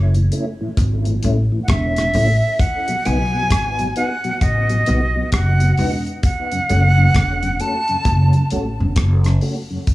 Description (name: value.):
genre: roots reggae.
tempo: 66 BPM.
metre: 4/4.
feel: swing 62% on 16ths.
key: unclear.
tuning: A4 = 440 Hz.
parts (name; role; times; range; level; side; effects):
upright bass; bass; 0.0-9.4 s; E1 to B1; -16 LUFS; equal; none.
mellow tonewheel organ; accompaniment; 0.1-9.8 s; F#2 to F#4; -25 LUFS; left 1 dB; chorus vibrato, slow rotary speaker, tape echo.
damped 70s drum kit; drums; 0.1-9.9 s; hi-hat, kick drum, rim click; -20 LUFS; equal; none.
bright silver concert flute; melody; 1.6-8.5 s; D#5 to A5; -21 LUFS; equal; dub echo.
room: light reverb.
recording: small room reverb.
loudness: -15 LUFS.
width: side -17 dB against mid.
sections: 0.0-9.9 A section.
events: none.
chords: 0.0 A; 2.6 B; 6.2 F#m.